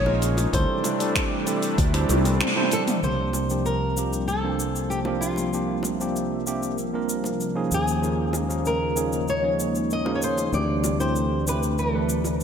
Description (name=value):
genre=sunset chillout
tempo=96 BPM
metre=4/4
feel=straight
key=C mixolydian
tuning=A4 = 441 Hz
part: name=flamenco guitar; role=melody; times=0.0-12.4 s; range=F4 to Eb5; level=-28 LUFS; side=left 1 dB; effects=analog delay
part: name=barky tine electric piano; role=accompaniment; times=0.0-12.4 s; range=E3 to Db5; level=-28 LUFS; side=right 1 dB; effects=auto-pan, analog delay
part: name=lush unison pad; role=sustained chords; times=0.0-12.4 s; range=C3 to E5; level=-29 LUFS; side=right 1 dB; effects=chorus
part: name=fretless electric bass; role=bass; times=0.0-12.4 s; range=Bb1 to Eb2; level=-27 LUFS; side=equal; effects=none
part: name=bongos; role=percussion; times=0.1-12.4 s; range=none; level=-37 LUFS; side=left 1 dB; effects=none
part: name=deep house drum kit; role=drums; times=0.2-12.4 s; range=finger snaps, hi-hat, shaker, toms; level=-28 LUFS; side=equal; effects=none
part: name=electronic kick drum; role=drums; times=0.5-1.9 s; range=none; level=-26 LUFS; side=equal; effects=none
room=moderate echo chamber reverb, RT60 2.1 s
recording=echo-heavy mix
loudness=-22 LUFS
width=side -7 dB against mid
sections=0.0-3.0 A section; 3.0-12.4 B section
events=drum fill 2.1-3.0; band accent 2.4-2.7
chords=0.0 Eb9sus4; 0.5 D9sus4; 3.0 C9sus4; 7.7 Eb9sus4; 10.5 D9sus4